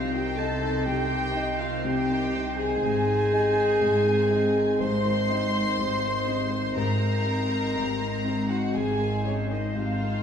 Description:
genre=cinematic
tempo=61 BPM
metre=4/4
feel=rubato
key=unclear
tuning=A4 = 440 Hz
part: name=rich studio violin section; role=melody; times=0.0-10.2 s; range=Db5 to C6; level=-33 LUFS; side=left 3 dB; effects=none
part: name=bright oboe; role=second line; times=0.0-10.2 s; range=C5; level=-38 LUFS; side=right 3 dB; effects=none
part: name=silver concert flute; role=second line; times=0.0-10.2 s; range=Db5 to C6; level=-37 LUFS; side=right 1 dB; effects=none
part: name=warm clarinet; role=second line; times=0.0-10.2 s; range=Eb4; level=-36 LUFS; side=right 2 dB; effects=none
part: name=warm studio violin section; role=second line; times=0.0-10.2 s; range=Db4 to C5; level=-36 LUFS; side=left 1 dB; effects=none
part: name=dark studio viola section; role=accompaniment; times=0.0-10.2 s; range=C3 to C4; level=-33 LUFS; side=equal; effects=none
part: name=warm concert grand piano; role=accompaniment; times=0.0-10.2 s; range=Ab1 to Eb5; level=-30 LUFS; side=left 3 dB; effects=none
part: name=mellow French horn section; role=sustained chords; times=0.0-10.2 s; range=Db4 to C5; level=-28 LUFS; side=equal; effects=none
part: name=concert harp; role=arpeggios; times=0.0-10.2 s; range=Ab2 to Eb5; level=-35 LUFS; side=left 6 dB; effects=none
part: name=rich studio double bass section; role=bass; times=0.0-10.2 s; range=Ab1 to C2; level=-35 LUFS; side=right 5 dB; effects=none
part: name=warm studio cello section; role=bass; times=0.0-10.2 s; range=Ab2 to C3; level=-34 LUFS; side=right 2 dB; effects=none
room=wet scoring stage reverb, RT60 1.8 s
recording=small room reverb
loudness=-23 LUFS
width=side -8 dB against mid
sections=0.0-10.2 A section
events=none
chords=0.0 Cm; 2.8 Ab

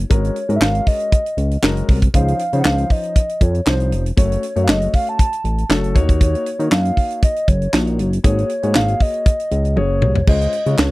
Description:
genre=early-eighties boogie funk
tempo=118 BPM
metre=4/4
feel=straight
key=Db major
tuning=A4 = 440 Hz
part: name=fat analog bass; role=bass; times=0.0-10.9 s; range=F1 to Eb3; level=-18 LUFS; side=equal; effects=none
part: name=hollow clarinet-like synth lead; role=melody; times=0.1-10.9 s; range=C5 to A5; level=-22 LUFS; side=equal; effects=chorus, slapback echo
part: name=dark grand piano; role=accompaniment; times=0.1-10.9 s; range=F3 to Db5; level=-25 LUFS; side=left 4 dB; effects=none
part: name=tight funk drum kit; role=drums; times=0.1-10.9 s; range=crash cymbal, handclaps, hi-hat, kick drum, snare drum, toms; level=-16 LUFS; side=equal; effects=none
room=little or no reverb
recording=dry, close 1970s-style studio recording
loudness=-15 LUFS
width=side -20 dB against mid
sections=0.0-10.3 A section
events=drum fill 9.8-10.3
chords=0.1 Ab9sus4; 2.1 Dbmaj9; 4.2 Gbm; 6.0 Ebm7; 8.2 Ab9sus4; 10.3 Dbmaj7

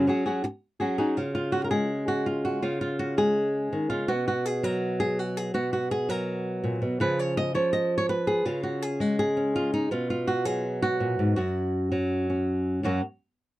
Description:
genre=flamenco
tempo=165 BPM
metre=4/4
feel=straight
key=unclear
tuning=A4 = 440 Hz
part: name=flamenco guitar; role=solo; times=0.0-13.0 s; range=F#2 to D#5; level=-24 LUFS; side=equal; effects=none
room=little or no reverb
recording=dry, close 1970s-style studio recording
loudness=-24 LUFS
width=side -16 dB against mid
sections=0.0-1.2 A section; 1.2-12.8 B section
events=none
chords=0.0 F#sus2; 1.2 C#; 4.1 B5; 7.0 C#; 9.9 B5; 11.4 F#5; 12.8 F#

